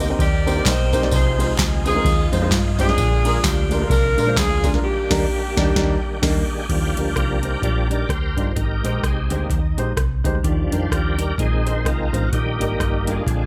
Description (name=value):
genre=uptempo gospel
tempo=129 BPM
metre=4/4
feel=swing 59% on 8ths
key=Eb major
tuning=A4 = 437 Hz
part: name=clear saxophone section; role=melody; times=0.0-6.2 s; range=Bb3 to D5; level=-25 LUFS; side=equal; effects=none
part: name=warm upright piano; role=accompaniment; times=0.0-13.5 s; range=Ab2 to Eb5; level=-28 LUFS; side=equal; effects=none
part: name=bright tonewheel organ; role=sustained chords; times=0.0-13.5 s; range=D3 to D5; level=-29 LUFS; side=equal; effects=fast rotary speaker, overdrive, chorus vibrato
part: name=hollow-body short-scale fingered electric bass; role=bass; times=0.0-13.5 s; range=G1 to G2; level=-26 LUFS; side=equal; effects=none
part: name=booming analog drum machine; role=drums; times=0.0-13.4 s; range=crash cymbal, hi-hat, kick drum, ride cymbal, rim click, snare drum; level=-24 LUFS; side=equal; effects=overdrive
part: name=tambourine and handclaps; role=percussion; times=0.0-4.7 s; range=none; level=-34 LUFS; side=equal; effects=none
room=light reverb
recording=none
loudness=-20 LUFS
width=mono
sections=0.0-6.7 A section; 6.7-13.5 B section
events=band accent 4.8-6.7; tonewheel organ solo 6.7-13.5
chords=0.0 Cm7; 1.1 Fm7/C; 3.0 Bb7; 4.8 Ebmaj7; 8.6 Abmaj7; 10.4 Ebmaj7; 11.4 Bb9sus4; 12.3 Eb